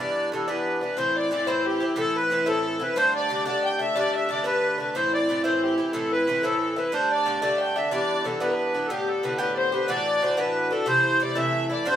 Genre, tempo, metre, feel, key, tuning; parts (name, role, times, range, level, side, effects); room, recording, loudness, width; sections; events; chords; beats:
celtic folk, Celtic jig; 121 BPM (dotted quarters); 6/8; straight; A4 = 440 Hz
accordion; melody; 0.0-12.0 s; G4 to G5; -25 LUFS; equal
Irish bouzouki; accompaniment; 0.0-12.0 s; G2 to G4; -26 LUFS; right 1 dB
dark fiddle; second line; 0.8-12.0 s; G4 to G5; -30 LUFS; left 3 dB
wet large studio reverb, RT60 0.8 s; band playing live in one room; -22 LUFS; side -10 dB against mid
1.0-8.9 A section; 8.9-12.0 B section
0.0 G6; 1.0 Am; 3.0 Dsus4; 4.9 Am; 6.9 Dsus4; 7.9 G6; 8.9 Gadd9; 9.9 Dadd9; 10.9 Am
0.48 | 0.97 1.47 | 1.97 2.47 | 2.96 3.46 | 3.96 4.45 | 4.95 5.44 | 5.94 6.43 | 6.93 7.42 | 7.92 8.41 | 8.90 9.40 | 9.89 10.38 | 10.88 11.37 | 11.86